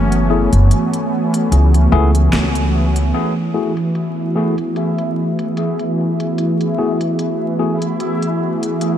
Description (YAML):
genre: ambient dub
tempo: 74 BPM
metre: 4/4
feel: swing 55% on 16ths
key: F# minor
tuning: A4 = 445 Hz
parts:
  - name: airy breathy pad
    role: sustained chords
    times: 0.0-9.0 s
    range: E3 to G#5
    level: -18 LUFS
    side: right 1 dB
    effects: chorus
  - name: upright bass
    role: bass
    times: 0.0-3.1 s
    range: F#1 to C#2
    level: -13 LUFS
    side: equal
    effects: tube saturation
  - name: bubbling stepped-filter texture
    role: texture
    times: 0.0-9.0 s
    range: A3 to E5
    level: -25 LUFS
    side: equal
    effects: chorus, built-in reverb
  - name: organic electronic drum kit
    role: drums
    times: 0.1-9.0 s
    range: hi-hat, snare drum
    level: -26 LUFS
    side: equal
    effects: overdrive, low-pass filter on hats, low-pass filter on snare, low-pass filter on room
  - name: tine electric piano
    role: stabs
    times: 0.3-7.8 s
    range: A3 to G#4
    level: -23 LUFS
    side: left 4 dB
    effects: medium stereo tremolo, low-pass filter, dub echo
room: light reverb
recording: vinyl crackle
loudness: -14 LUFS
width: side -10 dB against mid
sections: 0.0-3.1 A section; 3.1-9.0 B section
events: band accent 2.3-2.7; filter sweep on drum 3.1-9.0; filter sweep on tine electric piano 3.1-9.0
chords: 0.0 F#m11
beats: 0.71 1.52 2.33 | 3.14 3.95 4.76 5.57 | 6.38 7.19 8.00 8.81